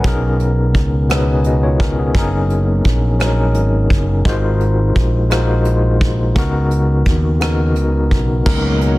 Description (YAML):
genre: slow six-eight R&B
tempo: 57 BPM (dotted quarters)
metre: 6/8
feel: straight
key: F# major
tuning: A4 = 440 Hz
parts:
  - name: barky tine electric piano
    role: accompaniment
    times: 0.0-9.0 s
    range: B2 to F#5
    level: -18 LUFS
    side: left 2 dB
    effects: overdrive, fast tremolo
  - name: soft brush drum kit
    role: drums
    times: 0.0-9.0 s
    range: crash cymbal, hi-hat, kick drum, rim click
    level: -18 LUFS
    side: equal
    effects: soft clipping on snare
  - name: fretless electric bass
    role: bass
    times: 0.1-9.0 s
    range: F#1 to D#2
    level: -16 LUFS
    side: equal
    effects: none
  - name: lush unison pad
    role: sustained chords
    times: 8.5-9.0 s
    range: B2 to F#4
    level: -22 LUFS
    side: left 1 dB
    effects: chorus
room: small room ambience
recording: dense, heavily limited modern master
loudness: -13 LUFS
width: side -19 dB against mid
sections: 0.0-8.5 A section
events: none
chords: 0.0 Bmaj13; 2.1 F#6; 4.3 G#13; 6.4 C#13sus4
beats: | 0.04 1.10 | 2.15 3.20 | 4.25 5.31 | 6.36 7.41 | 8.46